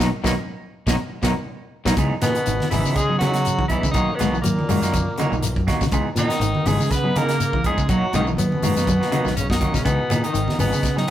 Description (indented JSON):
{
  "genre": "afrobeat",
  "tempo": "122 BPM",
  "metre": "4/4",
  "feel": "swing 54% on 16ths",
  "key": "C# dorian",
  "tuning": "A4 = 440 Hz",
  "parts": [
    { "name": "barky tine electric piano", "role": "accompaniment", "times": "0.0-1.9 s", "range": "A#3 to D#4", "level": "-32 LUFS", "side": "right 2 dB", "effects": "none" },
    { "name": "electric guitar at the edge of break-up", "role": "arpeggios", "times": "0.0-11.1 s", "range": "B2 to G#3", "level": "-25 LUFS", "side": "left 1 dB", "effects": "none" },
    { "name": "semi-hollow electric guitar", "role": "stabs", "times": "0.0-11.1 s", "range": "E3 to G#4", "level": "-28 LUFS", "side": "right 3 dB", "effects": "spring reverb" },
    { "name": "fingered electric bass", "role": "bass", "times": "0.0-11.1 s", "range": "G#1 to C#3", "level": "-25 LUFS", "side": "equal", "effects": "none" },
    { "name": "tight funk drum kit", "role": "drums", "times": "0.0-11.1 s", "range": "hi-hat, kick drum, snare drum", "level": "-26 LUFS", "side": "equal", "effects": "none" },
    { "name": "congas", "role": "percussion", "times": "0.0-10.7 s", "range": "none", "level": "-28 LUFS", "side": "equal", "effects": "none" },
    { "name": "shekere", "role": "percussion", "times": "0.0-11.0 s", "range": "none", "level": "-29 LUFS", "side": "left 5 dB", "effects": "none" },
    { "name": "edgy tenor saxophone", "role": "melody", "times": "2.2-11.1 s", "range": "A#3 to B4", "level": "-25 LUFS", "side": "left 1 dB", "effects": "slapback echo" },
    { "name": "bright trombone", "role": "second line", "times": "2.2-11.1 s", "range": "A#2 to B3", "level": "-31 LUFS", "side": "right 3 dB", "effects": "none" },
    { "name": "brilliant trombone section", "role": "second line", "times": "2.2-11.1 s", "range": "A#2 to B3", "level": "-32 LUFS", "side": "left 1 dB", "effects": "none" }
  ],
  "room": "light reverb",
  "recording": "rough rehearsal-room recording, warm saturation",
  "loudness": "-18 LUFS",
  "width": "side -12 dB against mid",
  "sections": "0.0-2.0 A section; 2.0-11.1 B section",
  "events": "band accent 0.0-2.0; tine electric piano fill 0.5-2.0; drum fill 1.0-2.0",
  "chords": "0.0 Bmaj7; 2.0 C#m9; 4.0 Bmaj7; 5.9 C#m9; 7.9 Bmaj7; 9.9 C#m9"
}